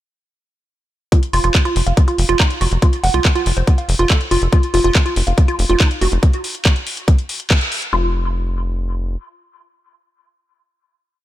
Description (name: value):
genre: psychedelic trance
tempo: 141 BPM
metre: 4/4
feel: straight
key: unclear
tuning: A4 = 440 Hz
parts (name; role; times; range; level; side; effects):
- woody wave-folded pluck; riff; 1.1-8.1 s; Eb4 to Gb5; -20 LUFS; moving between left 2 dB and right 4 dB; chorus, auto-pan, sidechain pumping, dub echo
- drum and bass drum kit; drums; 1.1-7.9 s; handclaps, hi-hat; -21 LUFS; equal; none
- electronic kick drum; drums; 1.1-7.6 s; none; -13 LUFS; equal; none
- tight sequencer bass; bass; 1.3-9.2 s; F1 to C2; -18 LUFS; equal; none
room: digital ambience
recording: none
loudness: -14 LUFS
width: side -14 dB against mid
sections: 1.1-7.9 groove; 7.9-11.2 final note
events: band accent 7.5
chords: 1.1 F5; 7.9 N.C.